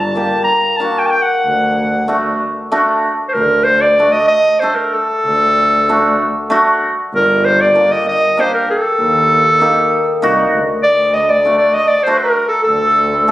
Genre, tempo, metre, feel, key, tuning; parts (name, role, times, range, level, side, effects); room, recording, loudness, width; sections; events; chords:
klezmer; 96 BPM; 3/4; straight; D phrygian dominant; A4 = 440 Hz
clear clarinet; melody; 0.0-13.3 s; A4 to Bb5; -12 LUFS; equal
mellow accordion; second line; 0.0-2.2, 10.8-13.3 s; A4 to Bb5; -19 LUFS; right 1 dB
muted double bass; bass; 0.0-13.3 s; G1 to Eb2; -21 LUFS; equal
hammered dulcimer; accompaniment; 0.2-13.3 s; A3 to A4; -17 LUFS; equal
moderate small room reverb, RT60 0.5 s; recorded on a phone in the room, studio reverb; -11 LUFS; side -15 dB against mid
0.0-3.4 A section; 3.4-13.3 B section
speeding up 0.0-13.3; clarinet solo 0.0-3.4
0.0 Gm; 1.4 D; 7.1 Gm; 9.0 Eb; 10.8 D